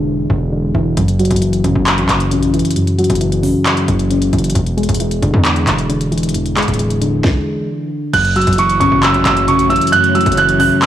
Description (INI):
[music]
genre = hip hop, trap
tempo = 134 BPM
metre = 4/4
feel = half-time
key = F# minor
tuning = A4 = 440 Hz
[part]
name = soft electric-piano-like synth keys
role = accompaniment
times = 0.0-10.9 s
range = E2 to G#3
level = -15 LUFS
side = left 1 dB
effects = chorus, low-pass filter
[part]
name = distorted 808-style bass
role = bass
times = 0.0-10.7 s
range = D1 to E2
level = -18 LUFS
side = equal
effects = distortion
[part]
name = trap drum kit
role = drums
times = 1.0-10.9 s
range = crash cymbal, handclaps, hi-hat, kick drum, snare drum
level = -19 LUFS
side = equal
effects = none
[part]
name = dark concert grand piano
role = melody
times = 8.1-10.9 s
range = C#6 to F#6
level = -13 LUFS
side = right 4 dB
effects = low-pass filter
[part]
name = glassy FM pad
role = sustained chords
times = 8.8-10.9 s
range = A3 to C#5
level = -22 LUFS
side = left 2 dB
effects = ensemble chorus, built-in reverb
[sound]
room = digital ambience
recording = blown-out, overdriven recording, overdrive, small room ambience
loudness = -12 LUFS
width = side -11 dB against mid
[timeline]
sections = 0.0-8.1 A section; 8.1-10.9 B section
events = stop 7.2-8.1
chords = 0.0 E7; 1.0 F#m7; 4.6 E7; 8.1 F#m7